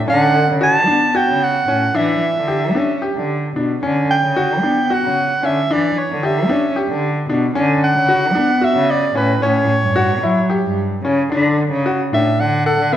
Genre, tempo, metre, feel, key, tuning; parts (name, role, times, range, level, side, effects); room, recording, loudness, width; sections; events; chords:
contemporary instrumental, chamber music in an uneven meter; 225 BPM (eighths); 7/8; straight; D major; A4 = 444 Hz
warm soprano saxophone; melody; 0.0-13.0 s; B4 to A5; -17 LUFS; right 2 dB
rich cello; bass; 0.0-13.0 s; G2 to C#4; -19 LUFS; equal
bright concert grand piano; arpeggios; 0.1-13.0 s; B3 to A4; -19 LUFS; left 2 dB
moderate scoring stage reverb, RT60 1.9 s; minimal, uncompressed stereo recording; -14 LUFS; side -11 dB against mid
0.0-11.3 A section; 11.3-13.0 B section
0.1 Dmaj7; 1.9 Em7; 3.8 Dmaj7; 5.7 Em7; 7.6 Dmaj7; 9.4 A7; 11.3 D